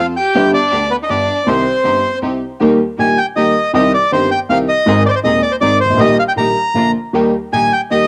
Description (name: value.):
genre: tango.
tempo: 159 BPM.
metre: 3/4.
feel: rubato.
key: Eb major.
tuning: A4 = 437 Hz.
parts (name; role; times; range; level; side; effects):
bandoneon; melody; 0.0-8.1 s; B4 to Bb5; -17 LUFS; equal; cassette tape.
warm violin; second line; 0.0-2.2 s; B3 to G4; -24 LUFS; equal; cassette tape.
dark upright piano; accompaniment; 0.0-8.1 s; Eb1 to Ab4; -18 LUFS; equal; cassette tape.
rich chamber string section; stabs; 0.0-8.1 s; Bb3 to A4; -26 LUFS; equal; cassette tape.
room: light reverb, small room ambience.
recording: home recording on cassette.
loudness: -14 LUFS.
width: mono.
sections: 0.0-2.6 A section; 2.6-8.1 B section.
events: none.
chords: 0.3 G; 1.5 Cm; 2.6 Eb; 3.7 Cm; 4.9 Ab; 6.0 Eb/Bb; 6.8 Bb; 7.1 Eb.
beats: | 0.35 0.72 1.09 | 1.47 1.85 2.23 | 2.61 2.99 3.37 | 3.75 4.12 4.50 | 4.87 5.25 5.62 | 5.99 6.37 6.76 | 7.14 7.53 7.91.